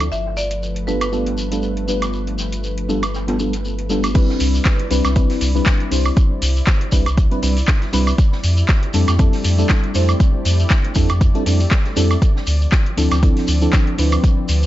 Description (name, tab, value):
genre	deep house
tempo	119 BPM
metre	4/4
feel	swing 55% on 16ths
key	C major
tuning	A4 = 440 Hz
part	marimba with medium hard mallets	melody	0.0-3.6 s	B4 to F5	-26 LUFS	equal	tape echo
part	warm analog pad	sustained chords	0.0-14.7 s	F3 to D5	-31 LUFS	left 1 dB	chorus, sidechain pumping
part	mellow FM electric piano	stabs	0.0-14.7 s	F3 to C5	-22 LUFS	equal	chorus, phaser, sidechain pumping, tape echo
part	sub bass with octave	bass	0.0-14.7 s	G1 to F2	-19 LUFS	equal	sidechain pumping
part	deep house drum kit	drums	0.0-14.6 s	crash cymbal, handclaps, hi-hat, woodblock	-25 LUFS	right 1 dB	overdrive
part	open jazz drum kit	drums	0.0-14.6 s	hi-hat, snare drum	-38 LUFS	right 2 dB	none
part	shekere	percussion	0.0-14.7 s	none	-29 LUFS	left 2 dB	none
part	electronic kick drum	drums	4.2-14.3 s	none	-15 LUFS	equal	overdrive
room	studio reverb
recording	nothing above 7.7 kHz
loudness	-15 LUFS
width	side -14 dB against mid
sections	0.0-4.2 A section; 4.2-14.7 B section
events	drop 4.2-14.7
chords	0.1 G9; 4.2 Cmaj9; 8.2 Fmaj13; 12.2 Dm7